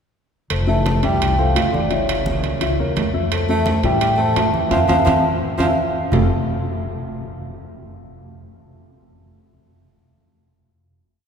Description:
Afro-Cuban jazz; 171 BPM; 4/4; straight; F major; A4 = 440 Hz
dark baby grand piano; accompaniment; 0.5-6.3 s; E3 to E5; -23 LUFS; left 4 dB
upright bass; bass; 0.5-6.3 s; F1 to A2; -23 LUFS; equal
congas; percussion; 0.5-6.2 s; -27 LUFS; equal
timbales; percussion; 0.5-6.2 s; -26 LUFS; right 6 dB
vibraphone with soft mallets; melody; 0.7-5.7 s; Db5 to A5; -22 LUFS; right 1 dB
warm tenor saxophone; second line; 0.7-5.7 s; Db3 to A3; -26 LUFS; right 2 dB
wet cathedral reverb, RT60 4.7 s; recorded in a church or concert hall; -16 LUFS; side -7 dB against mid
0.5-6.1 A section; 6.1-7.5 final chord
band accent 4.7-6.1; drum fill 5.6-6.1
0.5 Fmaj9; 1.9 Gb7; 3.3 Fmaj7; 6.1 Fmaj9
| 0.50 0.85 1.20 1.55 | 1.91 2.26 2.61 2.96 | 3.31 3.66 4.01 4.36 | 4.71 5.06 5.41 5.77 | 6.12

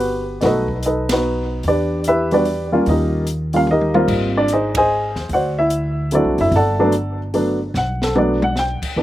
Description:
jazz piano trio; 147 BPM; 3/4; swing 65% on 8ths; A4 = 441 Hz
dark baby grand piano; melody; 0.0-9.0 s; E3 to A5; -17 LUFS; equal
upright bass; bass; 0.0-9.0 s; F#1 to E2; -23 LUFS; equal
open jazz drum kit; drums; 0.0-8.9 s; crash cymbal, hi-hat, kick drum, ride cymbal, snare drum, toms; -27 LUFS; left 1 dB
little or no reverb; recorded outdoors, with no room sound; -16 LUFS; side -14 dB against mid
0.0-9.0 A section
band accent 1.0, 4.7; drum fill 3.7-4.1, 7.7-8.6
0.4 B7; 1.6 Em7; 2.9 Eb7; 4.1 Abmaj7; 5.3 D7; 6.5 Gmaj9
0.01 | 0.42 0.82 1.23 | 1.64 2.05 2.45 | 2.86 3.27 3.67 | 4.08 4.49 4.89 | 5.30 5.71 6.12 | 6.52 6.93 7.34 | 7.74 8.15 8.55 | 8.96

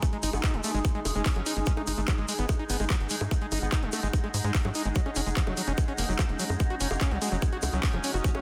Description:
psychedelic trance; 146 BPM; 4/4; straight; A4 = 440 Hz
overtone-sweeping drone; sustained chords; 0.0-8.4 s; G#3 to D#4; -40 LUFS; equal; chorus, built-in reverb, sidechain pumping
screaming distorted acid line; riff; 0.0-8.4 s; E#3 to F#4; -37 LUFS; equal; distortion, chorus, sidechain pumping, delay
electronic kick drum; drums; 0.0-8.3 s; -29 LUFS; equal; small room reverb
techno drum kit; drums; 0.0-8.4 s; bongos, handclaps, hi-hat; -37 LUFS; equal; overdrive, small room reverb
tube shaker; percussion; 0.0-8.3 s; -41 LUFS; equal
granular cloud pad; texture; 0.0-8.4 s; C#4 to G#5; -40 LUFS; equal; built-in reverb, sidechain pumping
tight sequencer bass; bass; 0.2-8.2 s; F#1 to G#2; -33 LUFS; equal; tube saturation
metallic wobble bass; second line; 0.3-3.8, 6.9-8.3 s; A#3 to C#4; -46 LUFS; equal
light reverb; dense, heavily limited modern master; -28 LUFS; mono
0.0-8.4 A section
0.0 G#5; 5.0 F#5
| 0.03 0.44 0.85 1.26 | 1.67 2.08 2.49 2.90 | 3.31 3.72 4.13 4.55 | 4.96 5.37 5.78 6.19 | 6.60 7.01 7.42 7.83 | 8.24

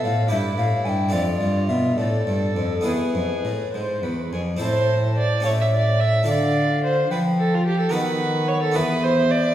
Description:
classical, baroque-style sonata movement with continuo; 71 BPM (dotted quarters); 6/8; uneven beats, rubato; A minor; A4 = 440 Hz
mellow hollow alto recorder; melody; 0.0-9.5 s; A4 to A5; -27 LUFS; left 4 dB
warm violin; second line; 0.0-9.5 s; E4 to E5; -24 LUFS; right 3 dB
harpsichord; accompaniment; 0.0-9.5 s; E2 to C5; -27 LUFS; equal
dark cello; bass; 0.0-9.5 s; E2 to F3; -22 LUFS; equal
wet recital hall reverb, RT60 1.6 s; heard from further back in the room; -19 LUFS; side -12 dB against mid
0.0-4.6 A section; 4.6-9.5 A section
0.3 Em/G; 1.1 Dm/F; 2.9 E; 4.6 Am; 5.4 A7; 6.3 Dm; 7.9 B7/D#; 8.8 E
0.31 | 1.13 1.98 | 2.86 3.74 | 4.61 5.45 | 6.28 7.11 | 7.94 8.77

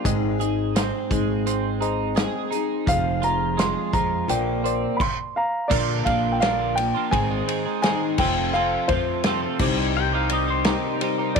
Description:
folk rock and heartland rock; 85 BPM; 4/4; straight; A4 = 440 Hz
picked steel-string acoustic guitar; accompaniment; 0.0-11.4 s; F2 to Bb4; -29 LUFS; left 11 dB
reed electric piano; accompaniment; 0.0-11.4 s; Eb4 to F5; -32 LUFS; left 13 dB
twelve-string electric guitar; riff; 0.0-11.4 s; F2 to A4; -27 LUFS; right 14 dB; analog chorus
upright bass; bass; 0.1-11.4 s; F1 to F2; -28 LUFS; equal
natural country drum kit; drums; 0.1-11.4 s; crash cymbal, hi-hat, kick drum, ride cymbal, snare drum; -26 LUFS; equal
dark concert grand piano; melody; 2.9-11.4 s; C5 to C6; -25 LUFS; equal
pedal steel guitar; second line; 10.0-11.4 s; Bb4 to G5; -27 LUFS; left 12 dB
light reverb; 1960s-style stereo with parts hard left and right; -20 LUFS; side -5 dB against mid
0.0-5.7 A section; 5.7-11.4 B section
grand piano solo 0.0-5.7
0.1 Ab; 2.9 Fm; 4.3 Bbadd9; 5.7 Bb; 7.1 Ab; 8.2 F; 9.6 Cm
| 0.06 0.76 1.47 2.18 | 2.88 3.59 4.29 5.00 | 5.71 6.42 7.12 7.83 | 8.54 9.24 9.95 10.66 | 11.36

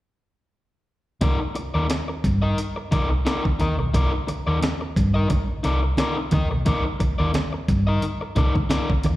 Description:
funk; 88 BPM; 4/4; swing 56% on 16ths; C minor; A4 = 442 Hz
crunchy overdriven guitar; accompaniment; 1.2-9.1 s; Eb4 to Eb5; -26 LUFS; left 2 dB; plate reverb, slapback echo
hollow-body short-scale fingered electric bass; bass; 1.2-9.2 s; B1 to G2; -22 LUFS; equal
breakbeat sampler-style drum kit; drums; 1.2-9.2 s; hi-hat, kick drum, snare drum; -24 LUFS; equal
congas; percussion; 4.3-9.2 s; -30 LUFS; right 6 dB; slapback echo
light reverb; live gig heard through the venue's PA, recital hall reverb; -20 LUFS; side -16 dB against mid
1.2-3.9 A section; 3.9-9.2 B section
1.2 Cm9
| 1.21 1.90 2.58 3.26 | 3.94 4.62 5.30 5.99 | 6.67 7.34 8.03 8.71

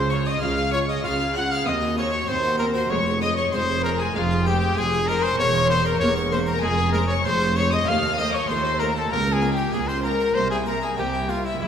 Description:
classical, baroque-style concerto movement with solo episodes; 97 BPM; 4/4; straight; F minor from 4.1 s; A4 = 439 Hz
clear trumpet; melody; 0.0-11.7 s; E4 to Gb5; -25 LUFS; left 1 dB
rich chamber violin section; second line; 0.0-11.7 s; E4 to Gb5; -28 LUFS; left 3 dB
harpsichord; accompaniment; 0.0-11.7 s; C2 to Db5; -32 LUFS; equal
dark studio cello section; bass; 0.0-11.7 s; C2 to Db3; -28 LUFS; right 3 dB
rich chamber double bass section; bass; 0.0-11.7 s; E1 to Eb2; -27 LUFS; right 2 dB
rich chamber violin section; melody; 0.1-11.7 s; E5 to Gb6; -29 LUFS; left 4 dB
dark chamber viola section; accompaniment; 0.1-11.7 s; Ab3 to F4; -32 LUFS; equal
wet scoring stage reverb, RT60 1.9 s; recorded in a church or concert hall; -20 LUFS; side -8 dB against mid
0.0-11.7 A section
0.0 Db; 1.7 Cdim/Eb; 2.9 Db/F; 4.1 Fm; 5.4 C7/E; 6.6 Fm; 7.9 F7/Eb; 9.1 Bbm/Db; 10.3 C7
0.42 1.04 | 1.66 2.28 2.90 3.52 | 4.14 4.76 5.38 6.00 | 6.62 7.24 7.86 8.48 | 9.10 9.73 10.35 10.98 | 11.61

